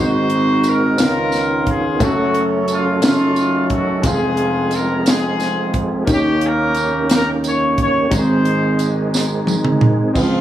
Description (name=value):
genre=slow gospel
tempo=59 BPM (dotted quarters)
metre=6/8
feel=straight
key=unclear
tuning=A4 = 440 Hz
part: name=warm horn section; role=melody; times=0.0-10.4 s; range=Ab3 to Db5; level=-19 LUFS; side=left 1 dB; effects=none
part: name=warm grand piano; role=accompaniment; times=0.0-10.4 s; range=F1 to A4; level=-19 LUFS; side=left 1 dB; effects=none
part: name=overdriven tonewheel organ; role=sustained chords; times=0.0-10.1 s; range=Eb3 to A4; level=-21 LUFS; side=right 3 dB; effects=slow rotary speaker, chorus vibrato
part: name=tight funk drum kit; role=drums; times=0.3-10.3 s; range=crash cymbal, hi-hat, kick drum, snare drum, toms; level=-18 LUFS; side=equal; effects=none
part: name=tambourine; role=percussion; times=0.6-10.4 s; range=none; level=-29 LUFS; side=right 6 dB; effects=none
part: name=breathy tenor saxophone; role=melody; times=10.2-10.4 s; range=F3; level=-20 LUFS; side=right 3 dB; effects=none
room=moderate large studio reverb, RT60 1.2 s, small room ambience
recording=none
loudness=-14 LUFS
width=side -12 dB against mid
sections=0.0-10.2 A section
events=drum fill 9.1-10.2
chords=0.0 Ab7; 1.0 Db9; 2.0 Gbm; 3.0 Gbm6; 4.0 Fm; 6.1 Eb7; 8.1 Ab